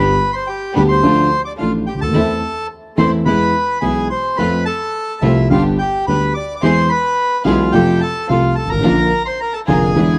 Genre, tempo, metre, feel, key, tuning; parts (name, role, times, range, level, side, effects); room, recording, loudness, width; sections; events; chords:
tango; 108 BPM; 4/4; rubato; A4 = 440 Hz
bandoneon; melody; 0.0-10.2 s; E4 to D6; -20 LUFS; equal
dark concert grand piano; accompaniment; 0.0-10.2 s; F1 to A4; -17 LUFS; equal
rich chamber string section; stabs; 0.0-10.2 s; E3 to Bb4; -26 LUFS; equal
studio ambience; dry, close 1970s-style studio recording; -16 LUFS; mono
0.0-10.2 A section
0.0 G; 1.0 Dm; 2.1 Am/E; 3.3 E; 4.4 F; 5.5 G; 6.6 E; 7.7 F; 8.8 Bb